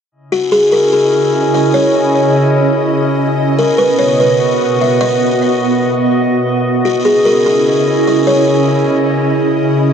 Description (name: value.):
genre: hip hop.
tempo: 147 BPM.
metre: 4/4.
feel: half-time.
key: unclear.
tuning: A4 = 440 Hz.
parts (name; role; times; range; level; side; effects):
ethereal airy pad; sustained chords; 0.7-9.9 s; B2 to D#5; -14 LUFS; right 1 dB; ensemble chorus, built-in reverb.
drifting glass-harmonics texture; texture; 0.6-9.9 s; B3 to D#5; -21 LUFS; left 2 dB; chorus, built-in reverb.
buzzing kalimba; melody; 0.3-8.7 s; F#4 to E5; -13 LUFS; left 1 dB; low-pass filter, tape echo.
room: moderate spring reverb, RT60 2.1 s.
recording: echo-heavy mix.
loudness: -10 LUFS.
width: side -7 dB against mid.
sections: 0.1-9.9 A section.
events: none.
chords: 0.1 C#madd9; 3.4 B; 6.6 C#madd9.